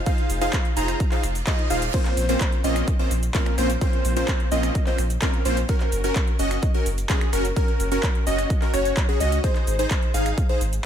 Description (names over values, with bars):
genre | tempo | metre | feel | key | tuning
EDM, festival progressive house | 128 BPM | 4/4 | straight | Bb minor | A4 = 440 Hz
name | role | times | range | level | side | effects
plucky unison lead | arpeggios | 0.1-10.6 s | Ab4 to Bb5 | -28 LUFS | equal | sidechain pumping, digital delay
supersaw stab | riff | 0.1-10.6 s | Bb3 to Bb5 | -26 LUFS | right 1 dB | sidechain pumping, digital delay
big-room dance drum kit | drums | 0.1-10.8 s | cabasa, crash cymbal, finger snaps, handclaps, hi-hat | -31 LUFS | equal | overdrive
electronic kick drum | drums | 0.1-10.5 s | none | -22 LUFS | equal | overdrive
saturated sub bass | bass | 0.3-10.8 s | Eb1 to Db2 | -25 LUFS | equal | sidechain pumping
reverse cymbal | sound effects | 1.2-1.9 s | none | -36 LUFS | right 5 dB | none
room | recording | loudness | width
digital ambience | none | -20 LUFS | side -9 dB against mid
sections
0.0-10.9 A section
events
reverse cymbal 1.2-1.9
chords
0.0 Fm7; 1.9 Bbmadd9; 5.7 Gb; 9.4 Ab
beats
| 0.07 0.53 1.00 1.47 | 1.94 2.41 2.88 3.35 | 3.81 4.28 4.75 5.22 | 5.69 6.16 6.63 7.10 | 7.57 8.03 8.50 8.97 | 9.44 9.91 10.38